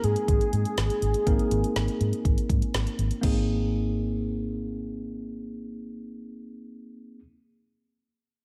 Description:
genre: synth-pop.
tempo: 122 BPM.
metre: 4/4.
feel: straight.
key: Ab major.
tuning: A4 = 440 Hz.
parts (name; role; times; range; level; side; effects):
unison lead; melody; 0.0-2.7 s; Ab4; -32 LUFS; equal; digital delay.
mellow tine electric piano; accompaniment; 0.0-7.2 s; Bb3 to Bb4; -34 LUFS; equal; none.
vintage muted fingered electric bass; bass; 0.0-7.2 s; Ab1 to Ab2; -30 LUFS; equal; none.
deep house drum kit; drums; 0.0-3.3 s; crash cymbal, hi-hat, kick drum, snare drum; -29 LUFS; equal; none.
room: light reverb.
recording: none.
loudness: -26 LUFS.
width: mono.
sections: 0.0-3.2 A section; 3.2-7.2 B section.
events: none.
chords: 0.0 Abadd9.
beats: 0.28 0.77 | 1.27 1.76 2.25 2.74 | 3.23 3.73 4.22 4.71 | 5.20 5.69 6.18 6.68.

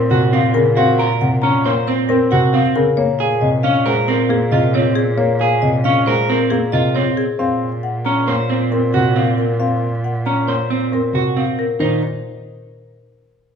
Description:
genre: classical, minimalist pattern music.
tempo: 136 BPM.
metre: 5/4.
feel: straight.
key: unclear.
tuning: A4 = 440 Hz.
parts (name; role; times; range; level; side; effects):
marimba with medium mallets; melody; 0.0-12.0 s; Ab4 to Bb5; -20 LUFS; left 7 dB; none.
warm baby grand piano; accompaniment; 0.0-12.0 s; C3 to C4; -20 LUFS; equal; none.
warm cello; bass; 0.0-12.0 s; Bb2; -22 LUFS; right 2 dB; none.
electric guitar at the edge of break-up; arpeggios; 0.1-12.0 s; C4 to C5; -19 LUFS; right 5 dB; none.
room: moderate recital hall reverb, RT60 1.6 s.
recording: minimal, uncompressed stereo recording.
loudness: -14 LUFS.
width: side -7 dB against mid.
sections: 0.0-11.8 A section; 11.8-13.6 B section.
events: none.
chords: 0.0 Gbmaj7/Bb; 3.0 Bbm9; 7.4 Gbmaj7/Bb; 11.8 N.C..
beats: 0.33 | 0.78 1.22 1.66 2.10 2.54 | 2.98 3.42 3.86 4.30 4.75 | 5.19 5.63 6.07 6.51 6.95 | 7.39 7.83 8.28 8.72 9.16 | 9.60 10.04 10.48 10.92 11.36 | 11.80.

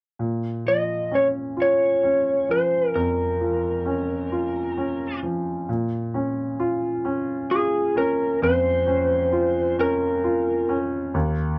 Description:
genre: pop.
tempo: 44 BPM (dotted quarters).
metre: 6/8.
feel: straight.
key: Bb minor.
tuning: A4 = 436 Hz.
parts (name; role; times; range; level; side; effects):
clear concert grand piano; accompaniment; 0.2-11.6 s; Eb2 to F4; -27 LUFS; equal; none.
electric slide guitar; melody; 0.7-10.8 s; Ab4 to Eb5; -24 LUFS; equal; none.
room: moderate booth ambience, RT60 0.2 s.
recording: none.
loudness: -23 LUFS.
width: mono.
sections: 0.2-5.7 A section; 5.7-11.6 B section.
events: none.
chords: 0.2 Bbm.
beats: | 0.20 1.57 | 2.94 4.31 | 5.68 7.04 | 8.41 9.78 | 11.15.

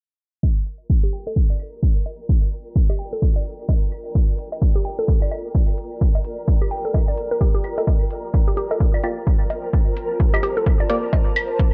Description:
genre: minimal techno.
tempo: 129 BPM.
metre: 4/4.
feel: swing 60% on 16ths.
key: G minor.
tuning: A4 = 441 Hz.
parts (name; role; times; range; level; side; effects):
electronic kick drum; drums; 0.4-11.7 s; none; -20 LUFS; equal; none.
cowbell and claves; percussion; 0.4-11.5 s; none; -30 LUFS; equal; tape echo.
flickering grainy texture; texture; 1.2-11.7 s; Bb4; -35 LUFS; equal; built-in reverb, sidechain pumping.
granular cloud pad; texture; 1.8-11.7 s; F4 to A5; -35 LUFS; equal; built-in reverb, sidechain pumping.
electronic hi-hat; drums; 0.7-11.5 s; none; -44 LUFS; equal; none.
mallet-like synth pluck; riff; 1.0-10.8 s; G4 to G5; -29 LUFS; equal; chorus, sidechain pumping, tape echo.
filtered dub chord stab; stabs; 9.0-11.0 s; Bb3 to D5; -28 LUFS; equal; phaser, subtle chorus, tape echo.
room: light reverb.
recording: low-pass filter.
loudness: -21 LUFS.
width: mono.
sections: 0.4-11.7 A section.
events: fade-in on ambient pad 0.4-11.7; filter sweep on synth arpeggio sound 0.4-11.7; filter sweep 0.4-11.7.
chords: 0.4 Gm7.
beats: | 0.43 0.90 1.36 1.83 | 2.29 2.76 3.22 3.69 | 4.15 4.62 5.08 5.55 | 6.01 6.48 6.94 7.41 | 7.87 8.34 8.80 9.27 | 9.73 10.20 10.66 11.13 | 11.59.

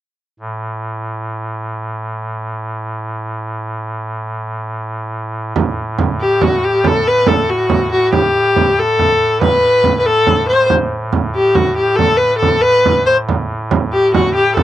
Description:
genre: medieval dance.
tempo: 93 BPM (dotted quarters).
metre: 6/8.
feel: straight.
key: unclear.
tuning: A4 = 442 Hz.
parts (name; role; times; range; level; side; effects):
pipe organ, soft reed; drone; 0.4-14.6 s; A2; -22 LUFS; right 1 dB; none.
frame drum; percussion; 5.6-14.6 s; none; -16 LUFS; right 4 dB; none.
warm viola; melody; 6.2-14.6 s; F#4 to C5; -12 LUFS; left 2 dB; none.
room: moderate booth ambience, RT60 0.2 s.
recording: dry, close 1970s-style studio recording.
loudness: -13 LUFS.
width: side -12 dB against mid.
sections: 0.4-5.6 A section; 5.6-14.6 B section.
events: none.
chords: none.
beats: | 0.39 1.04 | 1.68 2.33 | 2.97 3.62 | 4.26 4.91 | 5.55 6.20 | 6.84 7.49 | 8.13 8.77 | 9.42 10.06 | 10.71 11.35 | 11.99 12.64 | 13.28 13.92 | 14.56.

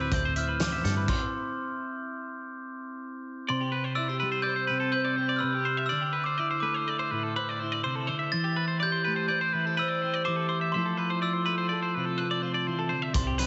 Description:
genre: math rock and midwest emo.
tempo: 124 BPM.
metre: 5/4.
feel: straight.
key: C major.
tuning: A4 = 440 Hz.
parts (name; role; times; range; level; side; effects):
glockenspiel with soft plastic mallets; melody; 0.0-13.5 s; C6 to A6; -33 LUFS; equal; slapback echo.
twelve-string electric guitar; accompaniment; 0.0-13.5 s; A2 to C5; -34 LUFS; equal; subtle chorus, slapback echo.
twangy electric guitar; arpeggios; 0.0-13.5 s; G4 to E5; -34 LUFS; equal; slapback echo.
overdriven picked electric bass; bass; 0.0-1.1, 13.2-13.5 s; C2 to G2; -33 LUFS; equal; none.
loose indie drum kit; drums; 0.1-1.2, 13.1-13.5 s; crash cymbal, hi-hat, kick drum, snare drum; -33 LUFS; equal; none.
room: moderate lush hall reverb, RT60 2.2 s.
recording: big arena sound, nothing above 8.0 kHz.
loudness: -29 LUFS.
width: mono.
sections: 0.0-3.5 A section; 3.5-13.5 B section.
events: stop 1.1-3.5.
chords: 0.0 Dsus2; 1.1 C; 3.5 Cmaj9; 5.9 Dsus2; 8.3 Am7/E; 10.7 Fmaj7.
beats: 0.12 0.60 | 1.09 1.57 2.05 2.53 3.02 | 3.50 3.98 4.46 4.95 5.43 | 5.91 6.39 6.88 7.36 7.84 | 8.32 8.81 9.29 9.77 10.26 | 10.74 11.22 11.70 12.18 12.66 | 13.15.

